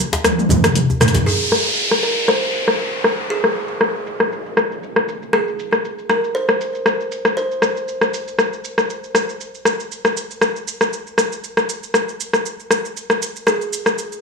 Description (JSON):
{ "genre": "afro house", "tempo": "118 BPM", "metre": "4/4", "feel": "swing 55% on 16ths", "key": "unclear", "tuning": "A4 = 440 Hz", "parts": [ { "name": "deep house drum kit", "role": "drums", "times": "0.0-14.2 s", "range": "hi-hat, rim click, shaker, toms", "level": "-17 LUFS", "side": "left 1 dB", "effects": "overdrive, low-pass filter on snare, low-pass filter on hats, low-pass filter on perc, low-pass filter on toms, low-pass filter on room" }, { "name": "djembe", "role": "percussion", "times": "0.1-1.2 s", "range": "none", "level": "-23 LUFS", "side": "left 2 dB", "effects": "none" }, { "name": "congas", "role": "percussion", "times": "0.5-1.1 s", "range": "none", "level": "-21 LUFS", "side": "right 3 dB", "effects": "none" }, { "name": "kalimba", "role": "melody", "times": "1.3-9.1, 13.5-14.2 s", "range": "Ab4 to C5", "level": "-24 LUFS", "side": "right 1 dB", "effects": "tape echo" }, { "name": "downlifter", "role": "sound effects", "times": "1.3-5.3 s", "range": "none", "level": "-22 LUFS", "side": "equal", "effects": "none" } ], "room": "moderate plate reverb, RT60 1.1 s", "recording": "small room reverb", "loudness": "-16 LUFS", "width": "side -4 dB against mid", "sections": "0.0-1.3 A section; 1.3-14.2 B section", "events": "drum fill 0.2-1.3; band accent 1.0; filter sweep on drum 1.3-14.2", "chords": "none" }